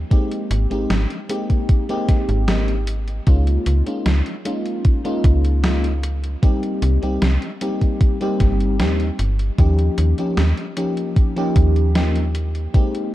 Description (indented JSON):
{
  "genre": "vaporwave",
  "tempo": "76 BPM",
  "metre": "4/4",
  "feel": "straight",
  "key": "unclear",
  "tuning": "A4 = 442 Hz",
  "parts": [
    { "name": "slap-like FM bass", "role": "bass", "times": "0.0-12.7 s", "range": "G1 to Eb2", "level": "-18 LUFS", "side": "equal", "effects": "tube saturation" },
    { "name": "FM electric piano with soft pad layer", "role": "accompaniment", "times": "0.1-13.1 s", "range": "F3 to G4", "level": "-23 LUFS", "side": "left 1 dB", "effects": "lush chorus, analog delay" },
    { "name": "electronic kick drum", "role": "drums", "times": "0.1-12.9 s", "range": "none", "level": "-15 LUFS", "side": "equal", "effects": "overdrive" },
    { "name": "gated 80s digital drum machine", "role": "drums", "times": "0.1-13.1 s", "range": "hi-hat, snare drum", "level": "-26 LUFS", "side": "right 1 dB", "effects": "gated reverb, gated reverb snare, overdrive" }
  ],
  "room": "little or no reverb",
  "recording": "dark, warm production",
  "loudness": "-16 LUFS",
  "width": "side -15 dB against mid",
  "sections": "0.0-13.1 A section",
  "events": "none",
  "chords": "0.1 Abmaj7; 3.3 Db6; 6.4 Cm7; 9.6 Eb7",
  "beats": "| 0.11 0.90 1.69 2.48 | 3.27 4.06 4.85 5.64 | 6.43 7.22 8.01 8.80 | 9.59 10.38 11.16 11.95 | 12.74"
}